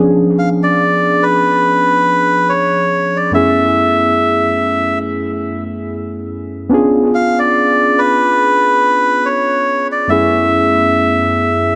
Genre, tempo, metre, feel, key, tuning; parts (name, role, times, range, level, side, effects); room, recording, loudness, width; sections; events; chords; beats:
R&B; 71 BPM; 4/4; swing 58% on 16ths; F# minor; A4 = 441 Hz
muted felt-like synth keys; accompaniment; 0.0-11.8 s; F#2 to G#4; -18 LUFS; equal; chorus, dub echo
melodica; melody; 0.4-11.7 s; B4 to E#5; -15 LUFS; equal; dub echo
light reverb, studio reverb; echo-heavy mix; -13 LUFS; mono
0.0-11.8 A section
0.0 C#7b9; 3.3 F#m11; 6.7 C#7b9; 10.1 F#m11
0.79 1.64 2.48 | 3.33 4.17 5.02 5.86 | 6.71 7.55 8.40 9.24 | 10.09 10.93